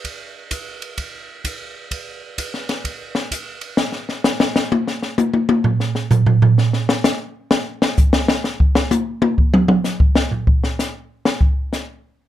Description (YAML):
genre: jazz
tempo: 128 BPM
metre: 4/4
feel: swing 66% on 8ths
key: none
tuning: none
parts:
  - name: open jazz drum kit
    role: drums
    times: 0.0-11.9 s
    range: hi-hat, kick drum, ride cymbal, snare drum, toms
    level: -16 LUFS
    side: equal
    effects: none
room: light reverb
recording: dark, warm production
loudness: -16 LUFS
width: side -12 dB against mid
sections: 0.0-3.8 A section; 3.8-12.3 B section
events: drum solo 3.8-12.3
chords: none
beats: | 0.04 0.51 0.98 1.44 | 1.91 2.38 2.84 3.31 | 3.78 4.25 4.71 5.18 | 5.65 6.11 6.58 7.05 | 7.51 7.98 8.45 8.92 | 9.38 9.85 10.32 10.78 | 11.25 11.72